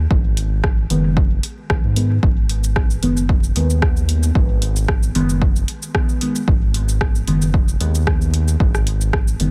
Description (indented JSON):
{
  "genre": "dub techno",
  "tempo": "113 BPM",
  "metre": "4/4",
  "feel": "swing 54% on 16ths",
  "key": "G# minor",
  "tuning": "A4 = 440 Hz",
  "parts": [
    { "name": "round analog bass", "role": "bass", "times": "0.0-9.5 s", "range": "F#1 to G#2", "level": "-21 LUFS", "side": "equal", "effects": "sidechain pumping" },
    { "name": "electronic kick drum", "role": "drums", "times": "0.1-9.2 s", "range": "none", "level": "-20 LUFS", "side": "equal", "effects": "none" },
    { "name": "punchy analog drum machine", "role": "drums", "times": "0.4-9.5 s", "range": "hi-hat, rim click, shaker", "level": "-28 LUFS", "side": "equal", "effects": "soft clipping on snare" },
    { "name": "deep mellow chord stab", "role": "stabs", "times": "0.9-9.5 s", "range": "D#3 to B3", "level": "-26 LUFS", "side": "equal", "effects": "chorus, phaser, sidechain pumping, dub echo" }
  ],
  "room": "little or no reverb",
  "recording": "dense, heavily limited modern master, vinyl crackle",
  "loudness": "-18 LUFS",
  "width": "mono",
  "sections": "0.0-9.5 A section",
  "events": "none",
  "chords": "0.0 G#m"
}